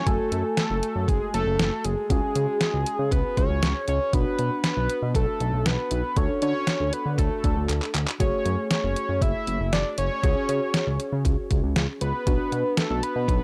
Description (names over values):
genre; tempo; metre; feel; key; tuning
synth-pop; 118 BPM; 4/4; straight; F# minor; A4 = 440 Hz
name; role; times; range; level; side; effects
fat analog lead; melody; 0.0-13.4 s; G#4 to E5; -30 LUFS; equal; chorus, tape echo
tine electric piano; accompaniment; 0.0-13.4 s; A3 to G#5; -34 LUFS; equal; analog chorus
fat analog bass; bass; 0.1-13.4 s; F#1 to D3; -29 LUFS; equal; none
detuned 8-bit digital drum machine; drums; 0.1-13.4 s; handclaps, hi-hat, kick drum, snare drum; -28 LUFS; equal; none
room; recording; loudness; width
little or no reverb; dry, gritty hardware recording; -25 LUFS; mono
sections
0.1-13.4 A section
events
drum fill 7.7-8.2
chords
0.1 F#madd9; 2.1 C#sus4; 4.1 Bm; 6.2 D; 8.2 F#madd9; 10.2 C#sus4; 12.3 Bm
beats
| 0.07 0.57 1.08 1.59 | 2.10 2.61 3.12 3.62 | 4.13 4.64 5.15 5.66 | 6.17 6.67 7.18 7.69 | 8.20 8.71 9.22 9.73 | 10.23 10.74 11.25 11.76 | 12.27 12.78 13.29